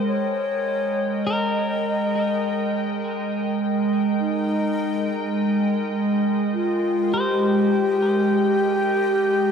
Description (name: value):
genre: ambient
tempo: 51 BPM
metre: 4/4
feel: straight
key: Ab major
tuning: A4 = 435 Hz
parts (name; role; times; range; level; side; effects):
- mellow hollow alto flute; melody; 0.0-9.5 s; Eb4 to Eb5; -23 LUFS; left 1 dB; ping-pong delay
- evolving wavetable pad; sustained chords; 0.0-9.5 s; Ab3 to G5; -22 LUFS; right 1 dB; chorus, built-in reverb
- electric guitar at the edge of break-up; arpeggios; 0.0-8.4 s; Bb4 to C5; -31 LUFS; left 1 dB; ping-pong delay
room: wet lush hall reverb, RT60 2.9 s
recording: dark, warm production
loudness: -20 LUFS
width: side -7 dB against mid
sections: 0.0-9.5 A section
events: none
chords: 0.0 Abmaj9